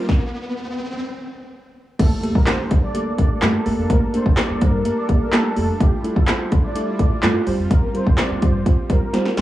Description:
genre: dance-pop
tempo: 126 BPM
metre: 4/4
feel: straight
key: G dorian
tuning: A4 = 440 Hz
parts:
  - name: deep mellow chord stab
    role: accompaniment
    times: 0.0-9.4 s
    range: G3 to C5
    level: -23 LUFS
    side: right 1 dB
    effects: chorus, sidechain pumping, cassette tape
  - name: soft supersaw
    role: sustained chords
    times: 0.0-9.4 s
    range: G3 to A4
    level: -28 LUFS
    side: equal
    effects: sidechain pumping, cassette tape
  - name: riser and impact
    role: sound effects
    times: 0.0-3.9 s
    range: none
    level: -28 LUFS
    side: left 1 dB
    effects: none
  - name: deep house drum kit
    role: drums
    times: 0.1-9.4 s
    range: crash cymbal, handclaps, hi-hat, kick drum, snare drum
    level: -18 LUFS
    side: equal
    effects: overdrive, cassette tape
  - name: filtered supersaw swell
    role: melody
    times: 2.0-9.4 s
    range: G4 to D5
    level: -28 LUFS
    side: equal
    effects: sidechain pumping, cassette tape, tape echo
  - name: sub bass with octave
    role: bass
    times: 2.0-9.4 s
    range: F1 to G2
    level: -23 LUFS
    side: equal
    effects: sidechain pumping
room: little or no reverb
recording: home recording on cassette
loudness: -16 LUFS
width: side -14 dB against mid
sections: 0.0-2.0 A section; 2.0-9.4 B section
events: build-up 0.0-2.0; riser 0.0-2.0; stop 0.1-2.0; drop 2.0-9.4; impact 2.0-3.9; drum fill 9.1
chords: 0.0 Csus4/G; 2.0 Gmadd9; 5.8 Dmadd9/G; 7.5 Csus4

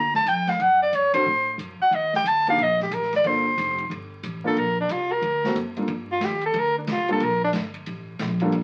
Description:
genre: jazz, small-group swing and bop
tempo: 181 BPM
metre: 4/4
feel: swing 63% on 8ths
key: G minor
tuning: A4 = 445 Hz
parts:
  - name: clear soprano saxophone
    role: melody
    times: 0.0-7.5 s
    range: D4 to Bb5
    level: -23 LUFS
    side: equal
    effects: none
  - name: upright bass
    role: bass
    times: 0.0-8.6 s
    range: F1 to A2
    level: -35 LUFS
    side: equal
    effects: none
  - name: open jazz drum kit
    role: drums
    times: 0.1-8.6 s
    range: hi-hat, kick drum, ride cymbal, snare drum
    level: -38 LUFS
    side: equal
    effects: none
  - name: warm concert grand piano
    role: accompaniment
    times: 1.1-8.5 s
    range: G2 to A4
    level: -29 LUFS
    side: equal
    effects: none
room: moderate studio reverb, RT60 0.6 s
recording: very old 78 rpm record, vinyl crackle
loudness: -23 LUFS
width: mono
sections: 0.0-5.9 A section; 5.9-8.6 B section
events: band accent 1.1; soprano saxophone solo 5.9-8.6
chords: 0.0 Gm9; 0.6 D7 (rootless); 1.9 Ebmaj7(no3); 3.2 Gm9; 5.2 D7b13; 5.9 Gmadd9

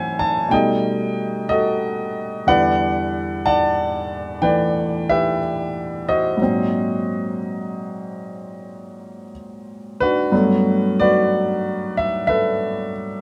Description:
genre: solo jazz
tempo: 61 BPM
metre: 4/4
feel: swing 67% on 8ths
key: G major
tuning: A4 = 444 Hz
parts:
  - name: warm upright piano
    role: solo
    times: 0.0-13.2 s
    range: E2 to A5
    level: -21 LUFS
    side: equal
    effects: none
room: light reverb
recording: close, detailed microphones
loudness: -20 LUFS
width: mono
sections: 0.0-10.3 A section; 10.3-13.2 B section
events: none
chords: 0.0 F#m7b5; 0.5 B7b13; 2.5 Em9; 6.4 Ab9; 10.3 Gmaj9

